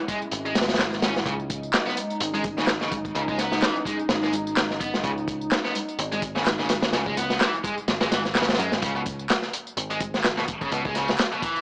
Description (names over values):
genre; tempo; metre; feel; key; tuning
breakbeat, breaks; 127 BPM; 4/4; swing 56% on 16ths; C# minor; A4 = 440 Hz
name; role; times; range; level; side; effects
phased analog pad; sustained chords; 0.0-8.8 s; G#3 to E4; -31 LUFS; equal; phaser, chorus, sidechain pumping
tight distorted guitar; riff; 0.1-11.6 s; B2 to C#4; -28 LUFS; equal; distortion, tube saturation, tape echo
crunchy breakbeat drum kit; drums; 0.1-11.6 s; hi-hat, kick drum, snare drum; -25 LUFS; equal; none
electronic tambourine and handclaps; drums; 0.1-11.6 s; none; -30 LUFS; equal; none
congas; percussion; 0.1-8.8 s; none; -37 LUFS; equal; none
picked electric bass; bass; 0.3-11.2 s; G#1 to F#2; -34 LUFS; equal; none
room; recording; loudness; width
light reverb, small room ambience; dry, gritty hardware recording, cassette tape, small speaker sound; -22 LUFS; side -34 dB against mid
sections
0.0-8.8 A section; 8.8-11.6 B section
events
kick drops out 7.9-8.8; drop 8.8-11.6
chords
0.0 C#m; 8.8 C#5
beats
0.32 0.79 | 1.26 1.74 2.21 2.68 | 3.15 3.63 4.10 4.57 | 5.04 5.52 5.99 6.46 | 6.93 7.41 7.88 8.35 | 8.82 9.30 9.77 10.24 | 10.71 11.19